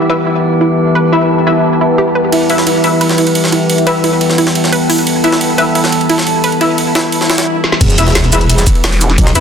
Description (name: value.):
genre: dark technical drum and bass.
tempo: 175 BPM.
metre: 4/4.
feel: straight.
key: E minor.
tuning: A4 = 438 Hz.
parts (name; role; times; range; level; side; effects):
metallic inharmonic drone; sustained chords; 0.0-9.4 s; E3 to A4; -15 LUFS; left 2 dB; chorus, built-in reverb, sidechain pumping.
orchestra-hit-like synth stab; stabs; 0.0-9.4 s; E4 to E5; -17 LUFS; left 2 dB; built-in reverb, digital delay.
deep dark ambient pad; texture; 0.0-7.5 s; E4 to A5; -16 LUFS; right 2 dB; chorus, built-in reverb, sidechain pumping.
analog pluck; arpeggios; 0.1-7.4 s; E4 to B4; -17 LUFS; right 3 dB; chorus, sidechain pumping, digital delay.
jungle sampler-style drum kit; drums; 2.3-9.4 s; hi-hat, ride cymbal, snare drum; -17 LUFS; right 2 dB; overdrive, high-pass filter on cymbals, high-pass filter on snare, high-pass filter on hats.
swell and sub drop; sound effects; 7.2-9.2 s; none; -19 LUFS; left 1 dB; none.
drum and bass drum kit; drums; 7.6-9.4 s; crash cymbal, hi-hat, shaker, snare drum; -15 LUFS; equal; low-pass filter on hats, low-pass filter on perc, low-pass filter on snare, low-pass filter on cymbals, low-pass filter on room.
metallic wobble bass; bass; 7.8-9.4 s; E1 to E2; -12 LUFS; equal; chorus, tube saturation.
electronic kick drum; drums; 7.8-9.2 s; none; -11 LUFS; equal; overdrive.
vowel-sweep wobble bass; bass; 8.8-9.2 s; E1; -12 LUFS; equal; chorus.
room: moderate lush hall reverb, RT60 2.1 s.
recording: dense, heavily limited modern master.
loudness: -9 LUFS.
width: side -7 dB against mid.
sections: 0.0-7.8 A section; 7.8-9.4 B section.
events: filter sweep on synth arpeggio sound 0.0-7.8; swell 7.2-7.8; drum fill 7.6; drop 7.8-9.4; impact 7.8-9.2.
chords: 0.0 Em.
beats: 0.27 0.61 | 0.95 1.30 1.64 1.98 | 2.32 2.67 3.01 3.35 | 3.70 4.04 4.38 4.72 | 5.07 5.41 5.75 6.10 | 6.44 6.78 7.12 7.47 | 7.81 8.15 8.50 8.84 | 9.18.